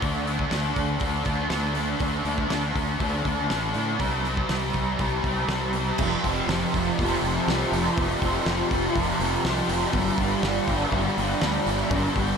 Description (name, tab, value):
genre	rock, shoegaze and dream pop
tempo	121 BPM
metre	4/4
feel	straight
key	unclear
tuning	A4 = 440 Hz
part	fuzz guitar	riff	0.0-12.4 s	F2 to D4	-24 LUFS	equal	distortion, analog chorus
part	growling fingered electric bass	bass	0.0-12.3 s	F1 to A2	-30 LUFS	equal	overdrive
part	loose indie drum kit	drums	0.0-12.3 s	crash cymbal, hi-hat, kick drum, snare drum	-31 LUFS	equal	none
room	wet lush hall reverb, RT60 2.0 s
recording	dreamy mix soaked in reverb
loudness	-22 LUFS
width	side -6 dB against mid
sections	0.0-6.0 A section; 6.0-12.4 B section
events	none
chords	0.0 D5; 4.0 C5; 6.0 F5; 9.9 G5